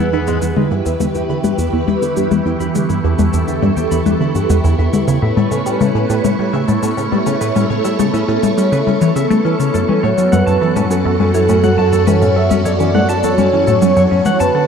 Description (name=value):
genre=ambient, sequencer-driven space music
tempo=103 BPM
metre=4/4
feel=straight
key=E dorian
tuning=A4 = 440 Hz
part: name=phased string machine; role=sustained chords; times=0.0-14.7 s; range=E2 to C#5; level=-19 LUFS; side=right 1 dB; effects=ensemble chorus, phaser, shimmer reverb
part: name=clean electric guitar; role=arpeggios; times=0.0-14.7 s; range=G#3 to B5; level=-25 LUFS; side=left 2 dB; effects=auto-pan, shimmer reverb, tape echo
part: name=tight sequenced synth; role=riff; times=0.0-14.7 s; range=E2 to A3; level=-17 LUFS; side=right 1 dB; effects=chorus, phaser, shimmer reverb, tape echo
part: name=electronic shaker and toms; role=percussion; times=0.3-14.5 s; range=none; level=-20 LUFS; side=left 7 dB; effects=tape echo
part: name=wind-like tuned noise texture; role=texture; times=0.9-14.7 s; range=B3 to C#6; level=-26 LUFS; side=right 4 dB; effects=built-in reverb, shimmer reverb
part: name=expressive synth lead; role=melody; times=9.7-14.7 s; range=A4 to E5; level=-16 LUFS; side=right 1 dB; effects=analog chorus, shimmer reverb, tape echo
part: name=analog drone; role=bass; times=10.7-14.7 s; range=D2 to F#2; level=-19 LUFS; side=equal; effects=chorus, phaser
room=wet spring reverb, RT60 2.2 s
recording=echo-heavy mix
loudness=-12 LUFS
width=side -7 dB against mid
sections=0.4-14.7 A section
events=fade-in on clean electric guitar 0.4-14.7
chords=0.4 Em; 5.1 Aadd9; 9.7 F#m